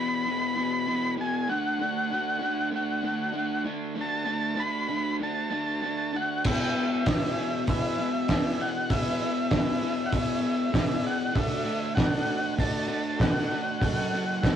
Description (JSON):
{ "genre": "garage rock duo or trio", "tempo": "97 BPM", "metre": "4/4", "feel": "straight", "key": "unclear", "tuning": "A4 = 445 Hz", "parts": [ { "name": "overdriven combo organ", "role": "melody", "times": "0.0-14.6 s", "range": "E5 to B5", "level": "-30 LUFS", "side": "equal", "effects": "none" }, { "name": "crunchy overdriven guitar", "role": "riff", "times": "0.0-14.6 s", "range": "E2 to D4", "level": "-29 LUFS", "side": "left 1 dB", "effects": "none" }, { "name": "cloth-damped thuddy drum kit", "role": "drums", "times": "6.4-14.6 s", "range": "crash cymbal, hi-hat, kick drum, snare drum", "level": "-27 LUFS", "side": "right 1 dB", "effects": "none" }, { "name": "combo organ", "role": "sustained chords", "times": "6.5-14.6 s", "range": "E4 to E5", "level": "-37 LUFS", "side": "equal", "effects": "none" } ], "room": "wet small room reverb, RT60 0.5 s", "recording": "rough rehearsal-room recording, cassette tape", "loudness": "-25 LUFS", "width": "side -9 dB against mid", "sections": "0.0-14.6 A section", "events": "none", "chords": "0.0 E; 1.5 D; 6.4 E; 11.4 D; 13.8 F#m" }